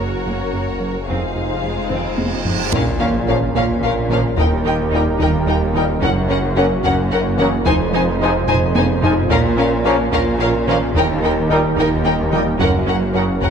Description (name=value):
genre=cinematic, hybrid orchestral and electronic film score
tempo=73 BPM (dotted quarters)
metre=6/8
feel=straight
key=Bb minor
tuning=A4 = 441 Hz
part: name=warm symphonic violin section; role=second line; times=0.0-13.5 s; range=Ab4 to F5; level=-25 LUFS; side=left 3 dB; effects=none
part: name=clear symphonic viola section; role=accompaniment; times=0.0-13.5 s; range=Db3 to Gb4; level=-26 LUFS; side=equal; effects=none
part: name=warm analog pad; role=sustained chords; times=0.0-13.5 s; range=Ab3 to C5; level=-25 LUFS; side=right 1 dB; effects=chorus
part: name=soft round pluck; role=arpeggios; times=0.0-13.5 s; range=Eb3 to Bb4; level=-28 LUFS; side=right 6 dB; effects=none
part: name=round analog bass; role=riff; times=0.0-13.5 s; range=Eb2 to Bb3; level=-26 LUFS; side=right 2 dB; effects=none
part: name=rich studio double bass section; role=bass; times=0.0-13.5 s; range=F1 to Eb2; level=-24 LUFS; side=right 3 dB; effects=none
part: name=rich symphonic cello section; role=bass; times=0.0-13.5 s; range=Eb2 to Bb2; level=-23 LUFS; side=right 1 dB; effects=none
part: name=wide detuned saw bass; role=bass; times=0.0-13.5 s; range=Eb1 to Bb1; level=-27 LUFS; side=left 1 dB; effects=chorus
part: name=taiko ensemble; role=drums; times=0.7-13.5 s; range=none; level=-24 LUFS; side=equal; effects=none
part: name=reverse cymbal and impact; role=sound effects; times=1.7-4.4 s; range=none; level=-27 LUFS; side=equal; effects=none
part: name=rich symphonic violin section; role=melody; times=2.7-13.5 s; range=F5 to Ab5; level=-24 LUFS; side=left 4 dB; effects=none
part: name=mellow French horn section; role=sustained chords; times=3.3-13.2 s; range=Ab3 to Eb4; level=-25 LUFS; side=left 4 dB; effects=none
part: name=warm trombone section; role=sustained chords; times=3.3-13.2 s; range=Bb2 to G3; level=-28 LUFS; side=right 4 dB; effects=none
room=moderate scoring stage reverb, RT60 1.6 s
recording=none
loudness=-15 LUFS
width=side -7 dB against mid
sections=0.0-2.7 A section; 2.7-13.5 B section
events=reverse cymbal 1.7-2.7; drum fill 1.9-2.7, 8.5-9.3; impact 2.7-4.4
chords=0.0 Gb; 1.1 Fm7; 2.7 Bbm; 4.4 Eb; 6.0 Gb; 7.7 Fm7; 9.3 Bbm; 11.0 Eb; 12.6 Gb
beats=0.27 | 1.09 1.92 | 2.74 3.56 | 4.38 5.20 | 6.03 6.85 | 7.67 8.49 | 9.31 10.13 | 10.96 11.78 | 12.60 13.42